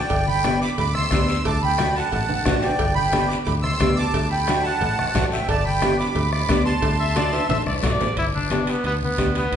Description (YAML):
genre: latin, cumbia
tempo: 178 BPM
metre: 4/4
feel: straight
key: G major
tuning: A4 = 440 Hz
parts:
  - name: accordion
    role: melody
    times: 0.0-7.6 s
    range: D5 to E6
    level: -23 LUFS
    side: right 2 dB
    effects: light tremolo tuning
  - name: fingered electric bass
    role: bass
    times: 0.0-9.6 s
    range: G1 to D2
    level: -26 LUFS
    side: equal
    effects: none
  - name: bombo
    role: percussion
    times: 0.1-9.6 s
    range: none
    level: -28 LUFS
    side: left 1 dB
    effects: none
  - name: congas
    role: percussion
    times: 0.1-9.6 s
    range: none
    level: -31 LUFS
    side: left 3 dB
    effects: none
  - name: cowbell and timbales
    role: percussion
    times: 0.1-9.6 s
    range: none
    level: -31 LUFS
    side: right 3 dB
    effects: none
  - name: guiro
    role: percussion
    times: 0.1-9.6 s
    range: none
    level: -35 LUFS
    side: left 4 dB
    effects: none
  - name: nylon-string guitar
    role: accompaniment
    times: 0.4-9.4 s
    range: A3 to G4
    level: -26 LUFS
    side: left 1 dB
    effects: none
  - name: warm trumpet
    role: second line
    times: 7.0-9.6 s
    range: B3 to E5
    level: -24 LUFS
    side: left 1 dB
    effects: none
room: wet recital hall reverb, RT60 1.6 s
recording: recorded in a church or concert hall, nothing above 10.8 kHz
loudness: -19 LUFS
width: side -8 dB against mid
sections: 0.0-8.2 A section; 8.2-9.6 B section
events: drum fill 2.3-2.8, 7.3-8.2; trumpet solo 8.2-9.6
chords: 0.1 G; 1.5 D; 2.8 G; 4.1 D; 5.5 G; 6.8 D7; 8.2 G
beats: | 0.11 0.45 0.78 1.12 | 1.46 1.79 2.13 2.46 | 2.80 3.14 3.47 3.81 | 4.14 4.48 4.82 5.15 | 5.49 5.82 6.16 6.49 | 6.83 7.17 7.50 7.84 | 8.17 8.51 8.85 9.18 | 9.52